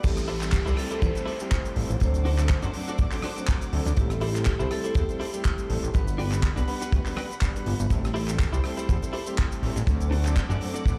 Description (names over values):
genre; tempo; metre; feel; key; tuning
nu-disco, nu disco; 122 BPM; 4/4; swing 54% on 16ths; A dorian; A4 = 441 Hz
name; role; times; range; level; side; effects
vibraphone with hard mallets; melody; 0.0-6.4 s; G4 to C5; -37 LUFS; equal; dub echo
clear grand piano; accompaniment; 0.0-11.0 s; F#3 to F#5; -37 LUFS; equal; sidechain pumping
clear chamber violin section; sustained chords; 0.0-11.0 s; G3 to D6; -44 LUFS; equal; sidechain pumping
direct-recorded clean electric guitar; riff; 0.0-10.9 s; D4 to D5; -38 LUFS; equal; lush chorus, vintage 12-bit sampler grit, dub echo
chorused synth bass; bass; 0.0-10.9 s; G1 to F#2; -28 LUFS; equal; sidechain pumping
damped 70s drum kit; drums; 0.0-11.0 s; cabasa, crash cymbal, handclaps, hi-hat, rim click; -38 LUFS; equal; none
kick drum; drums; 0.0-11.0 s; none; -26 LUFS; equal; none
swell and downlifter; sound effects; 0.0-4.0 s; none; -45 LUFS; equal; none
room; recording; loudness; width
small room reverb; played on a big sound system in a bare room, large studio reverb; -26 LUFS; mono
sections
0.0-11.0 A section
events
drop 0.0-11.0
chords
0.0 Am7; 2.0 D7; 4.0 Am7; 5.9 Gmaj7; 7.9 Am7; 9.9 D7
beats
| 0.04 0.53 1.02 1.52 | 2.01 2.50 2.99 3.48 | 3.98 4.47 4.96 5.45 | 5.94 6.43 6.93 7.42 | 7.91 8.40 8.89 9.38 | 9.88 10.37 10.86